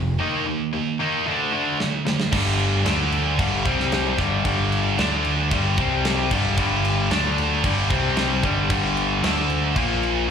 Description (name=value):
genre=hard rock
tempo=113 BPM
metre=4/4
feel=straight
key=G minor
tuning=A4 = 440 Hz
part: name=overdriven semi-hollow guitar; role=riff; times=0.0-10.3 s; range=F2 to Eb4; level=-25 LUFS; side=left 9 dB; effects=slapback echo
part: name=scooped high-gain guitar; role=riff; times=0.0-10.3 s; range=F2 to Eb4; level=-24 LUFS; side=right 8 dB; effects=distortion, slapback echo
part: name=overdriven picked electric bass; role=bass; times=0.0-10.3 s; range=F1 to D2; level=-25 LUFS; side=equal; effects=none
part: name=tight metal drum kit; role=drums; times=1.8-10.2 s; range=crash cymbal, kick drum, snare drum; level=-26 LUFS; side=equal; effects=none
room=little or no reverb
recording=live gig heard through the venue's PA, club reverb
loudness=-19 LUFS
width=side -7 dB against mid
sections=0.0-2.3 A section; 2.3-10.3 B section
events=drum fill 1.8-2.3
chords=0.2 Eb5; 1.3 D5; 2.3 G5; 2.9 D5; 3.4 G5; 3.7 C5; 4.2 G5; 5.0 D5; 5.5 G5; 5.8 C5; 6.3 G5; 7.1 D5; 7.6 G5; 7.9 C5; 8.4 G5; 9.2 D5; 9.8 Bb5